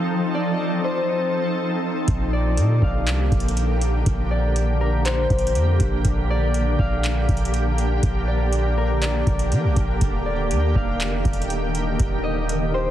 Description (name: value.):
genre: hip hop, atmospheric cloud-rap.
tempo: 121 BPM.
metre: 4/4.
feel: half-time.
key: Bb major.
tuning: A4 = 440 Hz.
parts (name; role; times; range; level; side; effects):
Celtic harp; melody; 0.0-12.9 s; Bb4 to F5; -28 LUFS; left 2 dB; digital delay.
shimmering ambient pad; sustained chords; 0.0-12.9 s; D3 to A4; -25 LUFS; equal; chorus, built-in reverb.
warm 808-style bass; bass; 2.1-12.9 s; Eb1 to F3; -21 LUFS; equal; none.
booming analog drum machine; drums; 2.1-12.6 s; handclaps, hi-hat, kick drum; -25 LUFS; equal; none.
room: digital ambience.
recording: heavily compressed radio sound, multiband compression.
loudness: -19 LUFS.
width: side -12 dB against mid.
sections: 0.0-12.9 A section.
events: none.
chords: 0.0 F7; 2.1 Bb6; 10.0 Ebmaj7.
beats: | 0.10 0.59 1.09 1.58 | 2.08 2.58 3.07 3.57 | 4.06 4.56 5.05 5.55 | 6.05 6.54 7.04 7.53 | 8.03 8.53 9.02 9.52 | 10.01 10.51 11.01 11.50 | 12.00 12.49.